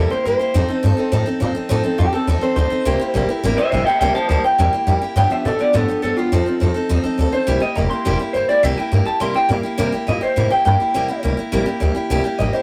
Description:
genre	rockabilly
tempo	208 BPM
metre	4/4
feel	straight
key	C mixolydian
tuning	A4 = 440 Hz
part	electric guitar through a small old amp	melody	0.0-12.6 s	F4 to C6	-21 LUFS	equal	none
part	picked steel-string acoustic guitar	accompaniment	0.0-12.6 s	G2 to A4	-23 LUFS	equal	none
part	upright bass	bass	0.0-12.6 s	E1 to C3	-21 LUFS	equal	none
room	moderate booth ambience, RT60 0.2 s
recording	rough rehearsal-room recording, tube saturation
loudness	-18 LUFS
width	mono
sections	0.0-9.8 A section; 9.8-12.6 B section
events	clean electric guitar solo 0.0-9.8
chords	0.0 C7; 0.5 F7; 2.9 C7; 5.2 G7; 6.3 F7; 7.5 C7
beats	0.26 | 0.55 0.84 1.12 1.41 | 1.70 1.99 2.28 2.57 | 2.85 3.14 3.43 3.72 | 4.01 4.30 4.59 4.88 | 5.17 5.45 5.74 6.03 | 6.32 6.61 6.90 7.19 | 7.48 7.77 8.05 8.34 | 8.63 8.92 9.21 9.50 | 9.79 10.08 10.37 10.66 | 10.95 11.24 11.53 11.82 | 12.11 12.39

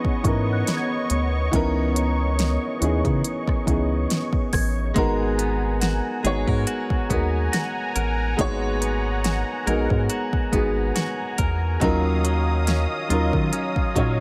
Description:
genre	contemporary R&B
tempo	70 BPM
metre	4/4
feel	swing 54% on 16ths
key	unclear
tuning	A4 = 440 Hz
part	dark grand piano	accompaniment	0.0-14.2 s	Fb3 to Db5	-27 LUFS	equal	none
part	warm analog pad	sustained chords	0.0-14.2 s	Cb4 to Eb6	-32 LUFS	equal	chorus
part	smooth R&B drum kit	drums	0.0-14.2 s	hi-hat, kick drum, rim click, snare drum	-27 LUFS	equal	none
part	small celesta	texture	0.0-11.4 s	Db6 to Bb6	-36 LUFS	equal	delay
part	rubbery square bass	bass	0.2-14.2 s	Ab1 to Eb3	-26 LUFS	equal	none
part	direct-recorded clean electric guitar	arpeggios	5.0-14.2 s	Eb3 to Bb4	-35 LUFS	equal	delay
room	digital ambience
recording	none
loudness	-23 LUFS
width	mono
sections	0.0-14.2 A section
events	none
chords	0.0 Dbm9; 5.0 Abm9; 11.8 Ebm9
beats	0.67 | 1.53 2.39 3.24 4.10 | 4.96 5.82 6.67 7.53 | 8.39 9.24 10.10 10.96 | 11.81 12.67 13.53

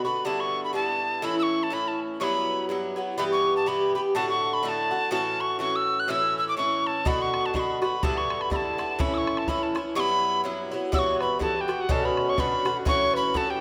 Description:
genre	celtic folk, Celtic polka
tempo	124 BPM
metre	2/4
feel	swing 57% on 8ths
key	E dorian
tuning	A4 = 442 Hz
part	tin whistle	melody	0.0-13.6 s	F#5 to F#6	-29 LUFS	equal	none
part	Irish bouzouki	accompaniment	0.0-13.6 s	G2 to G4	-29 LUFS	equal	none
part	bodhran	percussion	7.1-13.5 s	none	-34 LUFS	equal	none
part	mellow hollow wooden flute	second line	10.9-13.6 s	F#4 to C#5	-32 LUFS	equal	none
room	wet recital hall reverb, RT60 1.6 s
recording	none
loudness	-26 LUFS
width	mono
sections	0.0-3.2 A section; 3.2-10.9 A section; 10.9-13.6 B section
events	none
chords	0.3 Em7; 1.2 A; 2.2 Emadd9; 3.2 Em; 4.2 D; 5.1 F#m7; 6.1 A; 7.1 Bm; 8.0 Em7; 9.0 A; 10.0 Emadd9; 11.9 Bmadd9; 12.9 A6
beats	| 0.25 0.74 | 1.23 1.72 | 2.20 2.69 | 3.18 3.66 | 4.15 4.63 | 5.12 5.61 | 6.09 6.58 | 7.06 7.54 | 8.03 8.51 | 9.00 9.48 | 9.97 10.45 | 10.93 11.42 | 11.90 12.38 | 12.87 13.35

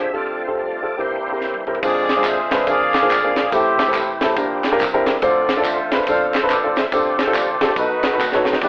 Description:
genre	uptempo gospel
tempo	142 BPM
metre	4/4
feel	swing 63% on 8ths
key	C major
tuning	A4 = 440 Hz
part	dark baby grand piano	accompaniment	0.0-8.7 s	G2 to D5	-19 LUFS	equal	none
part	dark French horn section	sustained chords	0.0-1.8 s	E3 to D4	-30 LUFS	equal	none
part	overdriven tonewheel organ	sustained chords	0.0-8.7 s	D3 to E5	-27 LUFS	equal	none
part	fingered electric bass	bass	0.0-8.7 s	E1 to E2	-40 LUFS	equal	none
part	crisp fusion drum kit	drums	1.4-8.7 s	crash cymbal, hi-hat, kick drum, snare drum, splash cymbal, toms	-22 LUFS	equal	none
part	accordion	melody	1.8-8.7 s	D#4 to F5	-20 LUFS	equal	none
part	tambourine and handclaps	percussion	1.8-8.7 s	none	-27 LUFS	equal	none
room	light reverb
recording	rough home demo mix, vinyl crackle, telephone sound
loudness	-16 LUFS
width	side -27 dB against mid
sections	0.0-1.8 A section; 1.8-8.7 B section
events	tonewheel organ solo 0.0-1.8; break 0.1-1.8; drum fill 1.4-1.8, 8.2-8.6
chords	0.1 G9sus4; 1.0 C7; 1.8 Fm6; 2.7 Bb9; 3.5 Am7; 4.4 Gm7; 4.8 C9; 5.2 Dm7; 6.9 G9sus4; 7.8 B7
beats	| 0.13 0.56 0.98 1.41 | 1.83 2.26 2.68 3.11 | 3.53 3.95 4.38 4.80 | 5.22 5.65 6.07 6.50 | 6.92 7.35 7.77 8.19 | 8.62

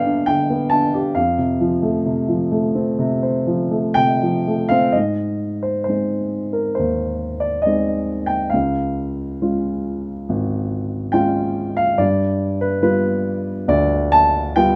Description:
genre	classical, lyrical solo piano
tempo	59-71 BPM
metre	4/4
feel	rubato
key	unclear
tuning	A4 = 438 Hz
part	dark baby grand piano	solo	0.0-14.8 s	Ab1 to A5	-19 LUFS	equal	none
room	light reverb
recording	close, detailed microphones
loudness	-20 LUFS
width	mono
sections	0.0-4.9 A section; 4.9-14.8 B section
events	none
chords	0.0 G; 1.2 F; 4.9 Ab; 8.5 Db; 12.0 G7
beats	0.28 | 1.17 2.05 2.98 3.97 | 4.95 5.88 6.79 7.66 | 8.54 9.42 10.29 11.15 | 11.99 12.84 13.70 14.57

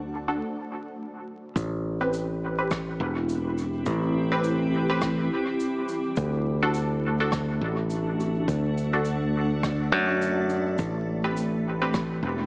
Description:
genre	ambient dub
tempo	104 BPM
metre	4/4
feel	swing 57% on 16ths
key	A dorian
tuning	A4 = 442 Hz
part	granular cloud pad	sustained chords	0.0-12.5 s	A3 to G5	-30 LUFS	equal	built-in reverb
part	filtered dub chord stab	stabs	0.0-12.0 s	C4 to B4	-30 LUFS	equal	phaser, lush chorus, dub echo
part	fingered electric bass	bass	0.0-12.5 s	E1 to F#2	-26 LUFS	equal	none
part	cabasa and rim click	drums	1.6-12.1 s	none	-37 LUFS	equal	dub echo
part	electronic kick drum	drums	1.6-12.1 s	none	-32 LUFS	equal	overdrive
room	moderate echo chamber reverb, RT60 2.0 s, studio ambience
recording	echo-heavy mix, vinyl crackle, small speaker sound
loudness	-24 LUFS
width	side -28 dB against mid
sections	0.0-1.6 A section; 1.6-12.5 B section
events	break 0.4-1.6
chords	0.0 D; 1.6 Am7; 6.2 D; 10.8 Am7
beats	0.40 0.98 | 1.56 2.13 2.71 3.29 | 3.87 4.44 5.02 5.60 | 6.17 6.75 7.33 7.90 | 8.48 9.06 9.63 10.21 | 10.79 11.37 11.94

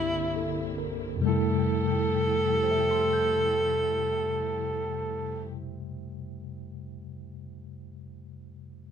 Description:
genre	jazz ballad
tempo	46 BPM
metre	4/4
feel	swing 68% on 8ths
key	F major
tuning	A4 = 440 Hz
part	breathy alto saxophone	melody	0.0-5.5 s	E4 to A4	-27 LUFS	right 1 dB	none
part	tine electric piano	accompaniment	0.0-8.9 s	C2 to G6	-31 LUFS	left 1 dB	medium stereo tremolo
part	warm symphonic string section	sustained chords	0.0-5.5 s	D3 to G4	-38 LUFS	equal	none
room	light reverb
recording	none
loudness	-25 LUFS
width	side -7 dB against mid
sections	0.0-1.2 A section; 1.2-6.5 B section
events	none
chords	0.0 C9; 1.2 Fmaj9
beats	| 1.24 2.56 3.87 5.18

